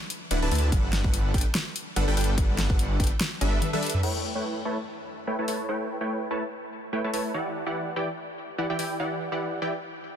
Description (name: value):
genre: future bass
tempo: 145 BPM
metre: 4/4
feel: swing 56% on 16ths, half-time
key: unclear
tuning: A4 = 440 Hz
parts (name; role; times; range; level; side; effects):
- pop drum kit; drums; 0.1-8.9 s; crash cymbal, hi-hat, snare drum, toms; -30 LUFS; left 1 dB; small room reverb
- supersaw stab; riff; 0.3-9.7 s; D3 to A5; -29 LUFS; equal; sidechain pumping, low-pass filter, ping-pong delay
- wide detuned saw bass; bass; 0.3-3.6 s; D1 to D2; -25 LUFS; equal; chorus, sidechain pumping
- electronic kick drum; drums; 0.7-3.1 s; none; -25 LUFS; equal; small room reverb
room: light reverb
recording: dense, heavily limited modern master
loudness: -25 LUFS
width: side -9 dB against mid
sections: 0.0-4.0 A section; 4.0-10.2 B section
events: drop 0.0-4.0; drum fill 3.6-4.0; filter sweep on supersaw synth 4.0-10.2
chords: 0.0 D69; 0.7 Gmaj9; 4.0 A9; 7.3 Em9